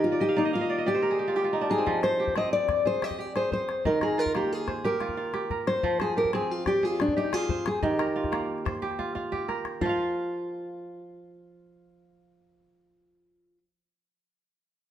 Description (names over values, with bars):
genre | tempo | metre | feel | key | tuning
west african traditional, West African string and xylophone music | 121 BPM (dotted quarters) | 12/8 | straight | unclear | A4 = 440 Hz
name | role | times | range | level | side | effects
fingerpicked steel-string acoustic guitar | melody | 0.0-13.6 s | D4 to Eb5 | -27 LUFS | left 2 dB | none
kora | arpeggios | 0.0-13.7 s | Eb3 to F5 | -30 LUFS | right 3 dB | none
calabash | percussion | 1.9-10.0 s | none | -36 LUFS | left 4 dB | none
room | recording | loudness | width
wet studio reverb, RT60 0.7 s | heard from further back in the room | -25 LUFS | side -11 dB against mid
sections
0.0-9.8 A section; 9.8-13.8 B section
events
kora fill 0.1-1.9; drum fill 9.0-9.8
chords
0.0 Eb; 1.9 Fm; 3.8 Eb; 5.8 Fm; 7.8 Eb; 9.8 N.C.